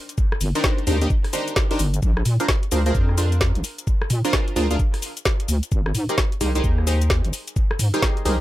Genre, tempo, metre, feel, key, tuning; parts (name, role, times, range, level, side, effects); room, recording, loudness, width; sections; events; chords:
UK garage, two-step garage; 130 BPM; 4/4; swing 63% on 16ths; A4 = 440 Hz
punchy chord stab; stabs; 0.0-8.4 s; D4 to F5; -25 LUFS; right 1 dB; chorus, dub echo
garage drum kit; drums; 0.1-8.4 s; hi-hat, rim click, shaker, snare drum; -26 LUFS; left 1 dB
electronic kick drum; drums; 0.2-8.1 s; -21 LUFS; equal
deep soft wobble bass; bass; 0.4-8.4 s; G1 to Bb2; -20 LUFS; equal; chorus, sidechain pumping
little or no reverb; -19 LUFS; side -15 dB against mid
0.0-8.4 A section
0.0 Cm9; 2.0 Bb9; 5.7 Abmaj9